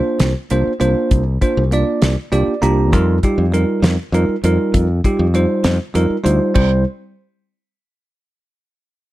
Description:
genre	electric jazz fusion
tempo	66 BPM (dotted quarters)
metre	6/8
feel	straight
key	unclear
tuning	A4 = 440 Hz
part	bell-like tine electric piano	accompaniment	0.0-6.8 s	G3 to Bb5	-17 LUFS	right 1 dB	none
part	fingered electric bass	bass	0.2-6.8 s	C2 to F2	-16 LUFS	equal	none
part	damped 70s drum kit	drums	0.2-6.7 s	crash cymbal, hi-hat, kick drum, snare drum	-17 LUFS	equal	none
room	light reverb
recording	none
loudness	-14 LUFS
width	side -16 dB against mid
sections	0.0-6.6 A section; 6.6-8.4 B section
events	tine electric piano fill 2.0-2.9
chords	0.0 C9sus4; 2.9 F9sus4; 6.6 C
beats	0.20 | 1.11 2.02 | 2.93 3.84 | 4.75 5.65 | 6.56

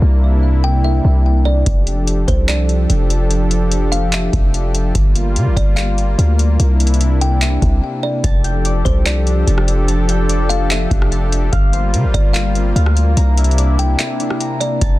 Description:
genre	hip hop, atmospheric cloud-rap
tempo	146 BPM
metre	4/4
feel	half-time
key	unclear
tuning	A4 = 438 Hz
part	warm analog pad	sustained chords	0.0-15.0 s	C3 to A4	-21 LUFS	equal	chorus, sidechain pumping
part	warm 808-style bass	bass	0.0-15.0 s	F1 to D3	-14 LUFS	equal	none
part	kalimba	melody	0.6-14.8 s	C5 to G5	-25 LUFS	left 1 dB	low-pass filter, ping-pong delay
part	booming analog drum machine	drums	1.7-15.0 s	handclaps, hi-hat, kick drum, rim click	-19 LUFS	equal	none
part	concert harp	arpeggios	8.2-15.0 s	C4 to Bb5	-26 LUFS	left 2 dB	low-pass filter, ping-pong delay
room	little or no reverb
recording	dense, heavily limited modern master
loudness	-13 LUFS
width	side -17 dB against mid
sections	0.0-8.2 A section; 8.2-15.0 B section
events	break 7.8-8.2, 14.0-14.8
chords	0.0 C9; 1.7 F69; 5.0 Gm7; 6.6 C9; 8.2 F69; 11.5 Gm7; 13.2 C9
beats	| 0.02 0.43 0.84 1.25 | 1.66 2.07 2.48 2.90 | 3.31 3.72 4.13 4.54 | 4.95 5.36 5.77 6.18 | 6.59 7.01 7.42 7.83 | 8.24 8.65 9.06 9.47 | 9.88 10.29 10.71 11.12 | 11.53 11.94 12.35 12.76 | 13.17 13.58 13.99 14.40 | 14.81

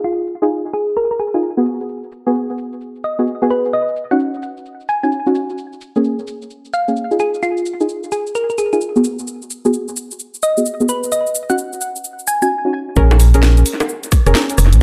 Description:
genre	UK garage, two-step garage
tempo	130 BPM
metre	4/4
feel	swing 63% on 16ths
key	Bb phrygian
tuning	A4 = 440 Hz
part	thumb-piano-like synth pluck	melody	0.0-12.5 s	F4 to Ab5	-22 LUFS	equal	chorus, phaser, analog delay
part	deep mellow chord stab	stabs	0.0-14.4 s	Bb3 to Bb4	-20 LUFS	equal	chorus, tape echo
part	garage drum kit	drums	0.0-14.8 s	bongos, hi-hat, rim click, shaker, snare drum	-24 LUFS	equal	studio reverb, analog delay
part	organ-like FM bass	bass	13.0-14.8 s	F1 to Bb1	-11 LUFS	equal	none
part	electronic kick drum	drums	13.0-14.2 s	none	-15 LUFS	equal	studio reverb
room	light reverb, digital ambience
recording	echo-heavy mix, low-pass filter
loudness	-17 LUFS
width	mono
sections	0.0-13.0 A section; 13.0-14.8 B section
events	filter sweep 0.0-13.0; drop 13.0-14.8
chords	0.0 Fm7; 1.7 Abm7; 3.7 Ebm7; 5.6 Bbm7; 7.2 Fm7; 9.0 Abm7; 11.1 Ebm7; 13.0 Bbm7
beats	| 0.04 0.50 0.97 1.43 | 1.89 2.35 2.81 3.27 | 3.73 4.20 4.66 5.12 | 5.58 6.04 6.50 6.97 | 7.43 7.89 8.35 8.81 | 9.27 9.73 10.20 10.66 | 11.12 11.58 12.04 12.50 | 12.97 13.43 13.89 14.35

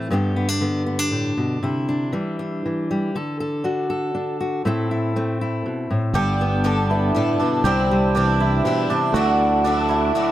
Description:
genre	folk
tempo	120 BPM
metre	3/4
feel	straight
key	G major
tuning	A4 = 441 Hz
part	fingerpicked steel-string acoustic guitar	accompaniment	0.0-10.3 s	G2 to B4	-22 LUFS	left 1 dB	none
part	picked twelve-string acoustic guitar	accompaniment	6.1-10.3 s	C3 to A4	-25 LUFS	left 2 dB	none
part	cimbalom	arpeggios	6.1-10.3 s	D4 to G4	-21 LUFS	right 2 dB	none
part	fingered electric bass	bass	6.1-10.1 s	G1 to D2	-21 LUFS	equal	none
part	dark baby grand piano	accompaniment	9.1-10.3 s	D2 to E5	-28 LUFS	right 6 dB	none
part	mellow tonewheel organ	sustained chords	9.1-10.3 s	A4 to D6	-28 LUFS	right 1 dB	slow rotary speaker, chorus vibrato
room	light reverb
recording	none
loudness	-19 LUFS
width	side -13 dB against mid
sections	0.0-6.1 A section; 6.1-10.3 B section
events	build-up 6.1-10.3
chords	0.1 Gadd9; 1.6 Cadd9; 3.1 D; 4.6 Am; 6.1 Gadd9; 7.7 Cadd9; 9.1 Dadd9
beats	| 0.11 0.61 1.12 | 1.62 2.13 2.63 | 3.13 3.63 4.14 | 4.64 5.14 5.64 | 6.15 6.65 7.15 | 7.65 8.15 8.65 | 9.15 9.65 10.15

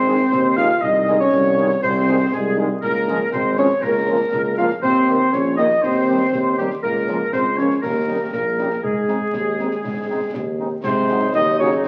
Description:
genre	military-style march for wind band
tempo	120 BPM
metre	2/4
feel	straight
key	Ab major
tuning	A4 = 440 Hz
part	clear woodwind section	second line	0.0-11.9 s	Eb4 to F5	-23 LUFS	equal	none
part	mellow euphonium	second line	0.0-11.9 s	C3 to F4	-24 LUFS	equal	none
part	clear tuba	bass	0.0-11.9 s	Ab1 to Ab2	-26 LUFS	equal	none
part	mellow cornet	melody	0.1-11.9 s	Eb4 to Eb5	-27 LUFS	equal	none
part	mellow French horn section	accompaniment	0.1-11.7 s	Eb3 to Gb4	-30 LUFS	equal	none
part	concert snare drum, concert bass drum and clash cymbals	drums	0.3-11.9 s	none	-36 LUFS	equal	none
part	clear trombone section	sustained chords	10.8-11.9 s	Gb3 to Eb4	-27 LUFS	equal	none
room	wet large studio reverb, RT60 1.2 s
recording	very old 78 rpm record, vinyl crackle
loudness	-19 LUFS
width	mono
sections	0.0-10.8 A section; 10.8-11.9 B section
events	none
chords	0.0 Ab; 0.8 Ab/C; 2.8 Db; 3.8 Bbm/Db; 4.8 Eb5; 5.8 Cm/Eb; 6.8 Bbm/Db; 7.8 Eb7; 8.8 Ab; 10.8 Ab7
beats	0.32 | 0.82 1.32 | 1.82 2.32 | 2.83 3.33 | 3.83 4.33 | 4.83 5.33 | 5.83 6.33 | 6.83 7.33 | 7.83 8.34 | 8.84 9.34 | 9.84 10.34 | 10.84 11.34 | 11.84

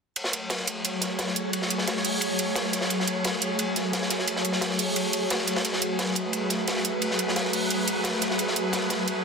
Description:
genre	dark technical drum and bass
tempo	175 BPM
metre	4/4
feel	straight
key	F# minor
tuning	A4 = 440 Hz
part	swarming drone	sustained chords	0.4-9.2 s	F#3 to C#5	-28 LUFS	equal	built-in reverb
part	crunchy breakbeat drum kit	drums	0.2-9.2 s	hi-hat, ride cymbal, snare drum	-28 LUFS	left 1 dB	high-pass filter on cymbals, high-pass filter on hats, high-pass filter on snare, high-pass filter on room
part	electronic hi-hat	drums	0.2-9.1 s	none	-28 LUFS	right 4 dB	overdrive
part	airy breathy pad	texture	0.2-9.2 s	A3 to G#5	-36 LUFS	right 2 dB	chorus
room	moderate digital room reverb, RT60 1.3 s, small room ambience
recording	dense, heavily limited modern master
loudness	-24 LUFS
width	side -4 dB against mid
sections	0.2-9.2 A section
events	fade-in on analog synth pad 0.2-9.2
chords	0.2 F#madd9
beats	| 0.16 0.50 0.85 1.19 | 1.53 1.88 2.22 2.56 | 2.90 3.25 3.59 3.93 | 4.28 4.62 4.96 5.30 | 5.65 5.99 6.33 6.68 | 7.02 7.36 7.70 8.05 | 8.39 8.73 9.08

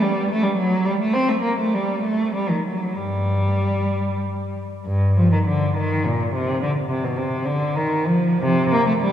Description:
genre	classical, baroque-style suite movement for unaccompanied cello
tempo	61-71 BPM (dotted quarters)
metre	6/8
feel	rubato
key	G minor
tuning	A4 = 441 Hz
part	rich cello	solo	0.0-9.1 s	G2 to C4	-19 LUFS	equal	none
room	wet church reverb, RT60 4.0 s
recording	heard from further back in the room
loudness	-19 LUFS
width	side -10 dB against mid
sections	0.0-4.9 A section; 4.9-9.1 B section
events	none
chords	none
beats	0.29 | 1.14 2.03 | 2.96 3.92 | 4.86 5.76 | 6.62 7.47 | 8.41

